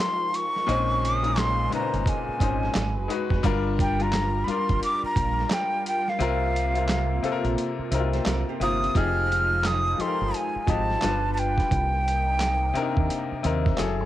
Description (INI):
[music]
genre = R&B, neo-soul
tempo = 87 BPM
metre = 4/4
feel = swing 62% on 16ths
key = F minor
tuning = A4 = 442 Hz
[part]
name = breathy jazz flute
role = melody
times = 0.0-13.4 s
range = F5 to F6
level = -26 LUFS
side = equal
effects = cassette tape
[part]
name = bright baby grand piano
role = accompaniment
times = 0.0-14.1 s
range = Bb2 to C5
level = -28 LUFS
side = left 6 dB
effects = cassette tape
[part]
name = lush unison pad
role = sustained chords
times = 0.0-14.1 s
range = C3 to Cb5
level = -35 LUFS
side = right 2 dB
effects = chorus, phaser, cassette tape
[part]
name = dusty soul sampler-style drum kit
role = drums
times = 0.0-14.0 s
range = handclaps, hi-hat, kick drum, snare drum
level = -28 LUFS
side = right 1 dB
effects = overdrive, cassette tape
[part]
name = deep dub fingered electric bass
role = bass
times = 0.7-14.1 s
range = F1 to Eb2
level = -27 LUFS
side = right 2 dB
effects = none
[part]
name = archtop guitar, miked and amplified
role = second line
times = 8.1-9.2 s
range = Bb3 to C5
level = -35 LUFS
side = right 9 dB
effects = cassette tape
[sound]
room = digital ambience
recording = home recording on cassette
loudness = -22 LUFS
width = side -13 dB against mid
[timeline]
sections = 0.0-9.0 A section; 9.0-14.1 B section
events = kick muted 7.6-9.0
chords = 0.0 Fm11; 0.7 Bbm11; 2.7 Abm7; 3.4 Gm7; 6.2 C7sus4; 9.0 Fm9; 11.0 G7; 11.7 Cm7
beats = | 0.68 1.36 2.05 2.74 | 3.43 4.12 4.81 5.50 | 6.19 6.88 7.57 8.26 | 8.95 9.64 10.33 11.02 | 11.71 12.40 13.09 13.78